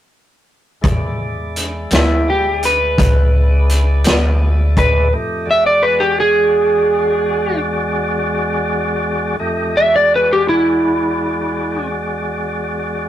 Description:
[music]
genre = slow blues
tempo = 56 BPM (dotted quarters)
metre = 12/8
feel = straight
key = E mixolydian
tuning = A4 = 440 Hz
[part]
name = tonewheel organ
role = sustained chords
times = 0.8-13.1 s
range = E2 to D#5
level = -21 LUFS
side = equal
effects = slow rotary speaker, overdrive
[part]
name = upright bass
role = bass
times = 0.8-5.1 s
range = C#2 to E2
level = -15 LUFS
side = equal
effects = none
[part]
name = vintage drum kit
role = drums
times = 0.8-4.9 s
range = hi-hat, kick drum, snare drum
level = -18 LUFS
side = equal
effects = none
[part]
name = electric slide guitar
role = melody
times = 1.9-11.9 s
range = E4 to E5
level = -14 LUFS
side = equal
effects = none
[sound]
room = moderate studio reverb, RT60 0.6 s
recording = rough rehearsal-room recording, tube saturation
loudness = -13 LUFS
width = side -12 dB against mid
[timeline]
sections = 0.8-5.1 A section; 5.1-13.1 B section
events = none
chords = 0.8 E7; 5.1 E9

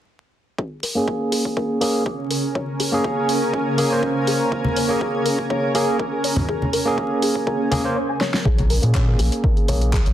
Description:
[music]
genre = deep house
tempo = 122 BPM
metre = 4/4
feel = swing 53% on 16ths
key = Bb minor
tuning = A4 = 441 Hz
[part]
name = soft round pluck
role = arpeggios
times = 0.6-10.0 s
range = Ab4 to Ab5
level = -29 LUFS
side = left 3 dB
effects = wide subtle chorus, sidechain pumping, digital delay
[part]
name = electronic kick drum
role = drums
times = 0.6-10.0 s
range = none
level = -24 LUFS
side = equal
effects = high-pass filter on kick
[part]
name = granular cloud pad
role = texture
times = 1.8-8.0 s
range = Db4 to Ab5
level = -24 LUFS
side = right 1 dB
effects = built-in reverb, sidechain pumping
[part]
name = deep house drum kit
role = drums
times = 0.8-10.1 s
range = handclaps, hi-hat, snare drum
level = -26 LUFS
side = equal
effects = none
[part]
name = barky tine electric piano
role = stabs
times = 1.0-9.9 s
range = Bb3 to C5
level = -22 LUFS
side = right 1 dB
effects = overdrive, sidechain pumping, low-pass filter, digital delay
[part]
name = congas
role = percussion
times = 4.6-9.8 s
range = none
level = -26 LUFS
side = left 1 dB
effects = none
[part]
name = round analog bass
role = bass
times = 8.5-10.1 s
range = Bb1 to Bb2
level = -19 LUFS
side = equal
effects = sidechain pumping
[sound]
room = light reverb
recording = dense, heavily limited modern master, vinyl crackle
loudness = -18 LUFS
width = side -11 dB against mid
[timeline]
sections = 0.6-8.5 A section; 8.5-10.1 B section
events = filter sweep on tine electric piano 0.6-8.5, 8.5-10.1; filter sweep on synth arpeggio sound 0.6-8.5; drum fill 8.2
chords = 0.6 Bbm7; 8.2 N.C.; 8.5 Bbm7

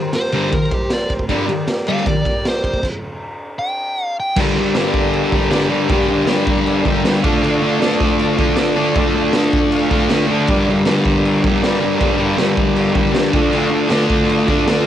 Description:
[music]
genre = garage rock duo or trio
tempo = 157 BPM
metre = 4/4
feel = straight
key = G minor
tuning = A4 = 439 Hz
[part]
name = combo organ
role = sustained chords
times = 0.0-14.9 s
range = F4 to Bb5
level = -23 LUFS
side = right 2 dB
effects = none
[part]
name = raw garage drum kit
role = drums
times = 0.1-14.8 s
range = crash cymbal, kick drum, ride cymbal, snare drum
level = -20 LUFS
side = equal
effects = cassette tape
[part]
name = fuzz lead guitar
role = melody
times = 0.2-4.4 s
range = G4 to G5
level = -21 LUFS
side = equal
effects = distortion, cassette tape
[part]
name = thick fuzz guitar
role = riff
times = 0.3-2.0, 4.4-14.9 s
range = G2 to D4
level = -16 LUFS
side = left 1 dB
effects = distortion
[sound]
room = light reverb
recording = home recording on cassette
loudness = -14 LUFS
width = side -10 dB against mid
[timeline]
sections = 0.0-4.4 A section; 4.4-14.9 B section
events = stop 2.8-4.4; transistor combo organ fill 6.3-7.4, 9.3-10.5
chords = 0.0 Gm; 7.2 Dm; 10.5 Gm; 13.3 Dm

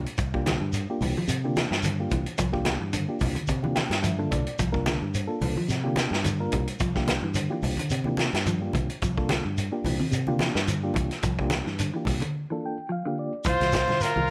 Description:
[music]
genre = afrobeat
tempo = 109 BPM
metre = 4/4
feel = swing 55% on 16ths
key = C mixolydian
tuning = A4 = 440 Hz
[part]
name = mellow reed electric piano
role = accompaniment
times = 0.0-13.4 s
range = Bb3 to G5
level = -34 LUFS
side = equal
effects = fast tremolo
[part]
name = fingered electric bass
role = bass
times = 0.0-14.3 s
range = C2 to C3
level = -32 LUFS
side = equal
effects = none
[part]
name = vintage drum kit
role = drums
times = 0.1-14.2 s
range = hi-hat, kick drum, snare drum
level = -32 LUFS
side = equal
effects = none
[part]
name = mellow electric guitar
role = arpeggios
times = 0.2-14.1 s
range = C3 to G3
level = -35 LUFS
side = equal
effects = subtle chorus
[part]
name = shekere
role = percussion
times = 0.2-14.2 s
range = none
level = -35 LUFS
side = equal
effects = none
[part]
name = congas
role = percussion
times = 0.5-14.3 s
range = none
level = -35 LUFS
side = equal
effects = none
[part]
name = warm trumpet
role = melody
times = 13.5-14.3 s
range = Bb4 to C5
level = -27 LUFS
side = equal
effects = tape echo
[part]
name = edgy tenor saxophone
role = second line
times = 13.5-14.3 s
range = F4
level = -32 LUFS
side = equal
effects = none
[sound]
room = light reverb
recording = none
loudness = -27 LUFS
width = mono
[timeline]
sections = 0.0-13.5 A section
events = reed electric piano fill 3.5-4.6, 12.3-13.5; break 12.3-13.5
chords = 0.0 C7sus4

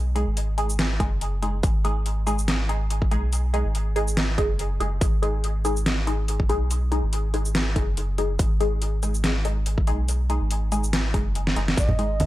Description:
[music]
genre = deep dubstep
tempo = 142 BPM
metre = 4/4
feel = swing 55% on 16ths, half-time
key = G# minor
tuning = A4 = 441 Hz
[part]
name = soft dub sub bass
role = bass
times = 0.0-12.3 s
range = F#1 to B1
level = -24 LUFS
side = equal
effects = none
[part]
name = filtered dub chord stab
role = stabs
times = 0.2-12.3 s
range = G#3 to G#4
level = -29 LUFS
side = left 1 dB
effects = phaser, lush chorus, dub echo
[part]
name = dubstep drum kit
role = drums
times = 0.2-12.3 s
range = hi-hat, shaker, snare drum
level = -27 LUFS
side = equal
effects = overdrive
[part]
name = electronic kick drum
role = drums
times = 1.0-11.9 s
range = none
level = -24 LUFS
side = equal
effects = overdrive
[part]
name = mellow long shakuhachi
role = melody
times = 11.8-12.3 s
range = D#5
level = -28 LUFS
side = right 3 dB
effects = none
[part]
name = congas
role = percussion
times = 11.9-12.3 s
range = none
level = -22 LUFS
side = right 1 dB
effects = none
[sound]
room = digital ambience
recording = dry, gritty hardware recording, transformer saturation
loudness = -21 LUFS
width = side -16 dB against mid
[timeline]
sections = 0.0-12.3 A section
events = drum fill 11.5-11.8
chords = 0.0 G#5

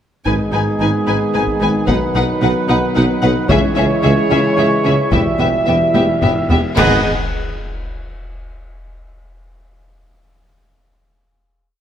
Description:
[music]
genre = cinematic, epic orchestral film score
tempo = 74 BPM (dotted quarters)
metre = 6/8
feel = straight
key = G# minor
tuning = A4 = 441 Hz
[part]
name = dark symphonic violin section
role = melody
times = 0.3-7.1 s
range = D#5 to G#5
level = -22 LUFS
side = left 4 dB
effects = none
[part]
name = warm symphonic violin section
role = second line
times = 0.3-7.1 s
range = G4 to B4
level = -24 LUFS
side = left 2 dB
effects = none
[part]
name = warm chamber viola section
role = accompaniment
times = 0.3-7.1 s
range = B3 to D#4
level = -24 LUFS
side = equal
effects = none
[part]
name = warm French horn section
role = sustained chords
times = 0.3-7.0 s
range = G3 to G#4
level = -22 LUFS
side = left 2 dB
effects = none
[part]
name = warm trombone section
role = sustained chords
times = 0.3-7.0 s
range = G#2 to G#3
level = -22 LUFS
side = right 3 dB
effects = none
[part]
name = clear trumpet section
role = stabs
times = 0.3-7.0 s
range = G#4 to E5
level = -21 LUFS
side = right 1 dB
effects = none
[part]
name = mellow tuba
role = bass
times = 0.3-7.0 s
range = E1 to C#2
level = -22 LUFS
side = right 1 dB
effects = none
[part]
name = rich studio double bass section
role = bass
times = 0.3-7.1 s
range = E1 to C#2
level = -23 LUFS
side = right 1 dB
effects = none
[part]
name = rich symphonic cello section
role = bass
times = 0.3-7.1 s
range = E2 to C#3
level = -22 LUFS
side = right 1 dB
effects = none
[part]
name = taiko ensemble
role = drums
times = 0.3-6.8 s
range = none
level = -20 LUFS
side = left 1 dB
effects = none
[part]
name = cymbal swell, clash cymbals and concert bass drum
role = percussion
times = 3.5-7.8 s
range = none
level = -27 LUFS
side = left 1 dB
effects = none
[sound]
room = wet scoring stage reverb, RT60 1.8 s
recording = none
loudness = -13 LUFS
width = side -9 dB against mid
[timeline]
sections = 0.3-6.8 theme; 6.8-8.4 final chord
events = drum fill 5.9-6.8; band accent 6.8-7.3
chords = 0.3 G#m; 1.9 B; 3.5 C#m; 5.1 Em; 6.8 G#m

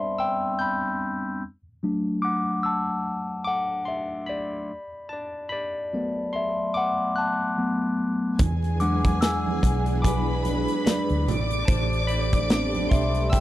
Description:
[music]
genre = lush 1970s-style soul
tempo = 73 BPM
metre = 4/4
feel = swing 58% on 16ths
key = unclear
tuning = A4 = 441 Hz
[part]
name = tine electric piano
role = accompaniment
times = 0.0-13.4 s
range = F#3 to G6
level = -25 LUFS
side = left 1 dB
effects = phaser
[part]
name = warm studio string section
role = second line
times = 8.4-13.4 s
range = G#4 to E6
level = -30 LUFS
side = equal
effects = none
[part]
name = soft string machine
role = sustained chords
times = 8.4-13.4 s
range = E3 to G#4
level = -32 LUFS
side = right 1 dB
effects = ensemble chorus
[part]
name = vintage muted fingered electric bass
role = bass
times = 8.4-13.4 s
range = A1 to E2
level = -26 LUFS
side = equal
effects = none
[part]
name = modern studio drum kit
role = drums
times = 8.4-13.4 s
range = hi-hat, kick drum, snare drum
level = -22 LUFS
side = equal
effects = none
[part]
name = congas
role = percussion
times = 8.4-13.4 s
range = none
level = -34 LUFS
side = right 7 dB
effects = none
[sound]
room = little or no reverb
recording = dry, close 1970s-style studio recording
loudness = -23 LUFS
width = side -14 dB against mid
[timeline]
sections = 0.0-13.4 A section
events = tine electric piano solo 0.0-13.4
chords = 0.0 Gadd11; 1.4 D13/F#; 8.4 E7; 11.3 Am11

